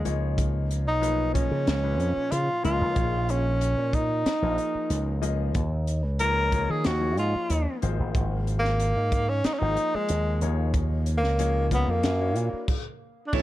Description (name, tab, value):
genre	electric jazz fusion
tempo	93 BPM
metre	4/4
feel	straight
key	unclear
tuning	A4 = 440 Hz
part	breathy tenor saxophone	melody	0.0-13.4 s	Ab3 to Bb4	-27 LUFS	equal	none
part	clear grand piano	accompaniment	0.0-13.4 s	Bb2 to Eb5	-34 LUFS	left 9 dB	none
part	slap bass with an envelope filter	bass	0.0-13.4 s	Ab1 to Eb3	-26 LUFS	equal	none
part	crisp fusion drum kit	drums	0.1-13.4 s	crash cymbal, hi-hat, kick drum, snare drum	-29 LUFS	equal	none
part	clean electric guitar	stabs	13.3-13.4 s	D4 to C#5	-26 LUFS	right 14 dB	ensemble chorus
room	small room reverb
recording	dark, warm production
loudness	-23 LUFS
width	side -15 dB against mid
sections	0.0-13.3 A section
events	stop 12.7-13.3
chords	0.1 Db7; 3.0 Bb7sus4; 5.6 Ebsus2; 7.8 Ab69; 10.4 Ebsus2; 12.0 Gb7b13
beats	| 0.38 1.02 1.67 2.32 | 2.96 3.61 4.26 4.91 | 5.55 6.20 6.85 7.50 | 8.14 8.79 9.44 10.09 | 10.74 11.39 12.03 12.68 | 13.33